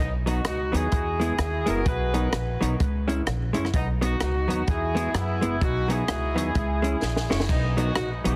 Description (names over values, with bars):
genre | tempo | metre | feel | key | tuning
ska | 128 BPM | 4/4 | swing 61% on 8ths | B major | A4 = 440 Hz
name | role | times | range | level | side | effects
clear horn section | melody | 0.0-8.4 s | B3 to B4 | -31 LUFS | equal | dub echo
upright bass | bass | 0.0-8.4 s | F#1 to F#2 | -30 LUFS | equal | none
vintage hollow-body jazz guitar | accompaniment | 0.3-8.4 s | F#3 to E4 | -31 LUFS | equal | none
compact cocktail drum kit | drums | 0.3-8.3 s | crash cymbal, hi-hat, kick drum, rim click, snare drum | -31 LUFS | equal | dub echo
room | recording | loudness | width
light reverb, small room ambience | heavily compressed radio sound, multiband compression | -25 LUFS | mono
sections
0.0-8.4 A section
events
drum fill 7.0-7.5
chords
0.0 B; 0.9 E; 1.9 B; 2.8 C#m; 3.7 B; 4.7 E; 5.6 B; 6.5 C#m; 7.5 B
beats
0.45 0.92 1.39 | 1.86 2.33 2.80 3.27 | 3.74 4.21 4.67 5.14 | 5.61 6.08 6.55 7.02 | 7.49 7.96